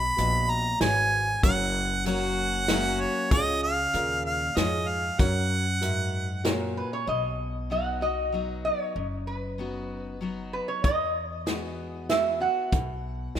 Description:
honky-tonk and classic country; 96 BPM; 3/4; straight; B major; A4 = 443 Hz
clear harmonica; melody; 0.0-6.4 s; C#5 to B5; -26 LUFS; right 2 dB
picked steel-string acoustic guitar; accompaniment; 0.0-13.4 s; E2 to F#4; -34 LUFS; left 4 dB
upright bass; bass; 0.0-13.4 s; F#1 to F#2; -32 LUFS; equal
clear upright piano; accompaniment; 0.2-6.9 s; E#4 to E5; -35 LUFS; right 3 dB
natural country drum kit; drums; 0.2-6.6, 10.8-13.4 s; hi-hat, kick drum, snare drum; -26 LUFS; left 1 dB
lap resonator guitar; second line; 6.8-13.4 s; B4 to F#5; -28 LUFS; right 2 dB
light reverb, small room reverb; rough home demo mix; -24 LUFS; side -10 dB against mid
0.0-7.1 A section; 7.1-13.4 B section
resonator guitar played with a steel bar solo 7.1-13.4
0.0 B; 1.4 F#; 3.3 C#; 5.2 F#; 7.1 B; 10.8 Eadd9

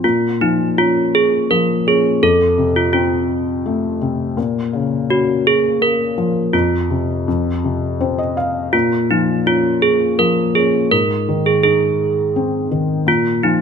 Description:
children's music, lullaby; 83 BPM; 3/4; straight; Bb minor; A4 = 440 Hz
desk bells; melody; 0.0-13.6 s; Eb4 to Bb4; -16 LUFS; right 3 dB
felt-muted upright piano; accompaniment; 0.0-13.6 s; F2 to F5; -18 LUFS; left 4 dB
light reverb; close, detailed microphones; -14 LUFS; side -6 dB against mid
0.0-13.6 A section
felt piano fill 7.6-8.7
0.0 Bbm; 2.2 F; 4.4 Bbm; 6.5 F5; 8.7 Bbm; 10.9 Ab; 13.1 Bb5

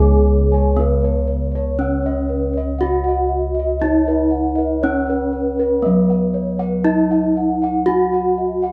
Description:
gamelan; 59 BPM; 4/4; straight; C# slendro; A4 = 440 Hz
gamelan-type bronze metallophone; melody; 0.0-8.7 s; B3-40c to G#4+20c; -22 LUFS; equal
gamelan-type bossed gongs; arpeggios; 0.0-8.7 s; B4-40c to G#5+20c; -28 LUFS; equal
gamelan-type bronze metallophone; arpeggios; 0.0-8.7 s; B4-40c to G#5+20c; -26 LUFS; equal
gamelan-type bossed gongs; bass; 0.0-8.7 s; C#2 to G#4+20c; -22 LUFS; equal
wet large studio reverb, RT60 1.0 s; band playing live in one room; -18 LUFS; mono
0.0-8.7 A section

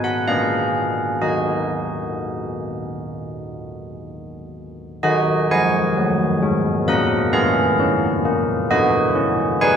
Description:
classical, tune for church bells; 64 BPM; 4/4; straight; Eb minor; A4 = 440 Hz
carillon bells; solo; 0.0-9.8 s; Eb3 to Ab5; -18 LUFS; equal
wet concert hall reverb, RT60 2.2 s; recorded in a church or concert hall; -17 LUFS; side -7 dB against mid
0.0-5.0 A section; 5.0-9.8 B section
0.3 Bb7; 1.2 Ebm; 8.7 B

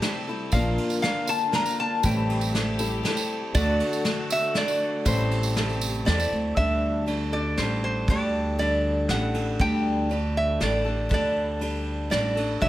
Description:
acoustic folk duo or small band; 119 BPM; 3/4; straight; A4 = 440 Hz
picked steel-string acoustic guitar; accompaniment; 0.0-12.7 s; A2 to B4; -29 LUFS; left 2 dB
warm chamber string section; sustained chords; 0.0-6.6 s; C3 to G4; -35 LUFS; equal
soft brush drum kit; drums; 0.0-12.7 s; kick drum, ride cymbal, snare drum; -30 LUFS; right 1 dB
lap resonator guitar; melody; 0.5-12.7 s; C5 to Bb5; -27 LUFS; equal
upright bass; bass; 0.5-12.7 s; A1 to E2; -27 LUFS; right 1 dB
tambourine; percussion; 0.5-6.4 s; -35 LUFS; right 6 dB
light reverb; -22 LUFS; side -14 dB against mid
0.0-6.6 A section; 6.6-12.7 B section
0.0 Am7; 0.5 Bb; 2.0 Am7; 3.5 D; 5.1 Am7; 6.6 Dsus4

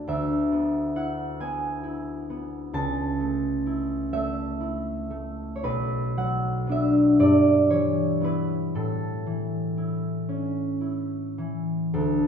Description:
classical, solo harp piece; 34-46 BPM (dotted quarters); 6/8; rubato; A4 = 441 Hz
concert harp; solo; 0.0-12.3 s; B1 to A5; -23 LUFS; equal
wet recital hall reverb, RT60 1.6 s; minimal, uncompressed stereo recording; -23 LUFS; side -7 dB against mid
0.0-11.9 A section
0.1 E7/D; 2.8 A/C#; 5.6 Bm; 7.2 Em/G; 8.7 A

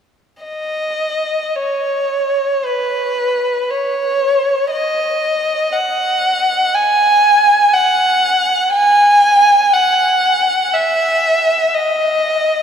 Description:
classical, free, expressive piece for unaccompanied violin; free time; A4 = 439 Hz
rich violin; solo; 0.4-12.6 s; B4 to G#5; -12 LUFS; equal
wet cathedral reverb, RT60 5.2 s; -12 LUFS; side -8 dB against mid
0.4-12.6 A section

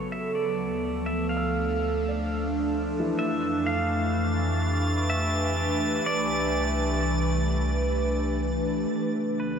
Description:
ambient; 63 BPM; 3/4; straight; A4 = 440 Hz
pedal steel guitar; melody; 0.0-9.6 s; B4 to F5; -33 LUFS; equal; tape echo
evolving wavetable pad; sustained chords; 0.0-9.6 s; C#3 to B4; -26 LUFS; equal; phaser, built-in reverb
felt-muted upright piano; arpeggios; 0.0-7.2 s; E3 to E6; -38 LUFS; equal; tape echo
warm sub bass; bass; 0.0-9.6 s; A1 to F2; -30 LUFS; equal
drifting glass-harmonics texture; texture; 3.9-8.9 s; A6; -35 LUFS; right 3 dB; chorus, built-in reverb
wet huge ambient reverb, RT60 8.6 s; -24 LUFS; side -7 dB against mid
0.0-8.9 A section
fade-in on felt piano 0.0-8.9; fade-in on sub bass 0.0-8.9; fade-in on pedal steel guitar 0.0-8.9
0.3 Dmadd9; 3.2 Fadd9; 6.1 Csus2; 8.9 A

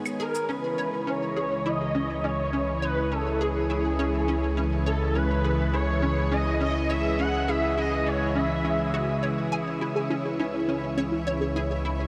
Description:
ambient, sequencer-driven space music; 103 BPM; 4/4; straight; C# minor; A4 = 440 Hz
phased analog pad; sustained chords; 0.0-12.1 s; C#3 to C#5; -31 LUFS; equal; phaser, chorus
hollow square pluck; riff; 0.0-12.0 s; G#3 to G#5; -36 LUFS; equal; ensemble chorus, delay
shaker and claves; percussion; 0.1-0.5 s; -41 LUFS; equal; delay
expressive portamento lead; melody; 0.2-9.2 s; G#4 to F#5; -32 LUFS; equal; ensemble chorus, delay
round analog bass; bass; 0.5-12.1 s; C#2; -33 LUFS; equal
pulsing gated texture; texture; 0.9-12.1 s; E4 to E5; -40 LUFS; equal; chorus, built-in reverb
warbly dusty pluck; arpeggios; 10.0-12.1 s; C#4 to C#5; -34 LUFS; equal; chorus, delay
wet shimmer reverb, RT60 8.5 s; -26 LUFS; mono
0.5-12.1 A section
0.5 C#m

